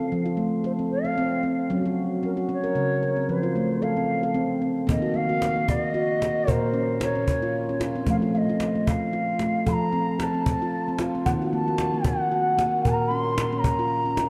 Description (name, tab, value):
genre	world meditative, meditative tuned percussion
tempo	113 BPM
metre	3/4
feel	swing 56% on 16ths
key	F phrygian dominant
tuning	A4 = 440 Hz
part	bansuri	melody	0.0-14.3 s	Bb4 to C6	-30 LUFS	equal	tape echo
part	handpan	arpeggios	0.0-14.3 s	Bb2 to Bb4	-27 LUFS	equal	none
part	cajon	percussion	4.9-14.3 s	none	-30 LUFS	equal	none
room	wet plate reverb, RT60 3.3 s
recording	dark, warm production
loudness	-25 LUFS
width	mono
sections	0.0-4.9 A section; 4.9-14.3 B section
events	none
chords	0.0 F; 1.7 Gb; 3.3 F; 4.9 Ebm; 6.5 Bbm; 8.1 F; 11.3 Ebm; 12.8 Bbm